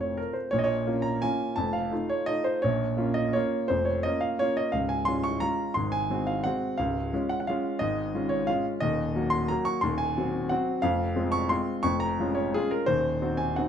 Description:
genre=classical, piano waltz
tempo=175 BPM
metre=3/4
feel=uneven beats, rubato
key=Bb minor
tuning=A4 = 440 Hz
part: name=warm baby grand piano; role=solo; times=0.0-13.7 s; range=Db1 to Db6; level=-25 LUFS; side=equal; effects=none
room=moderate large studio reverb, RT60 1.4 s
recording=minimal, uncompressed stereo recording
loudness=-25 LUFS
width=side -8 dB against mid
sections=0.5-13.7 A section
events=none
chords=0.0 F; 0.5 Bbm; 1.6 F7; 2.6 Bbm; 4.7 Db; 5.8 Ab7; 6.8 Db; 8.8 Ebm; 9.8 Cdim/Eb; 10.8 Fm; 11.8 Db/F; 12.9 Cdim/Eb

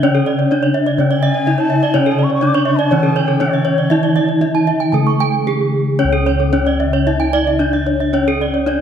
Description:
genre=gamelan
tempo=112-125 BPM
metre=4/4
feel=straight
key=C# pelog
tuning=A4 = 440 Hz
part: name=gamelan-type bronze metallophone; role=melody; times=0.0-8.8 s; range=C#4 to A4-40c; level=-18 LUFS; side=equal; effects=none
part: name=gamelan-type bronze metallophone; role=accompaniment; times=0.0-6.0 s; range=C#3 to A3-40c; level=-22 LUFS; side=right 3 dB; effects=none
part: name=gamelan-type bronze metallophone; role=arpeggios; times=0.0-8.8 s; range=A4-40c to A5-40c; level=-22 LUFS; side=left 5 dB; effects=none
part: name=gamelan-type bronze metallophone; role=arpeggios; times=0.0-8.5 s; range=A4-40c to C#6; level=-20 LUFS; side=right 6 dB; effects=none
part: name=gamelan-type bossed gongs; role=bass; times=0.0-8.8 s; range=C#2 to E4-50c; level=-18 LUFS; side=left 1 dB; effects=none
part: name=breathy bansuri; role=second line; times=1.2-4.7 s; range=C#5 to D6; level=-23 LUFS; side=left 2 dB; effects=none
room=moderate scoring stage reverb, RT60 1.9 s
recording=none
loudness=-13 LUFS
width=side -8 dB against mid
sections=0.0-6.0 A section; 6.0-8.8 B section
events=none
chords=none

